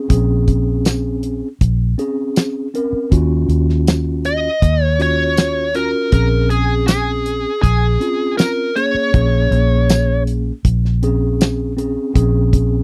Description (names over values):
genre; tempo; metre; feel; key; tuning
straight-eighth soul blues; 80 BPM; 4/4; straight; Bb minor; A4 = 440 Hz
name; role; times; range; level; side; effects
mellow tine electric piano; accompaniment; 0.0-12.8 s; Bb3 to Bb4; -23 LUFS; equal; none
vintage muted fingered electric bass; bass; 0.1-12.8 s; Bb1 to Eb2; -19 LUFS; equal; none
damped 70s drum kit; drums; 0.1-12.7 s; hi-hat, kick drum, snare drum, tambourine; -17 LUFS; equal; none
smooth overdriven lead guitar; melody; 4.3-10.2 s; Ab4 to Eb5; -21 LUFS; equal; none
room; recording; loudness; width
little or no reverb; dry, close 1970s-style studio recording; -16 LUFS; mono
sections
0.0-12.8 A section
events
none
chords
0.0 Bbm7; 3.1 Ebm7; 6.1 Bbm7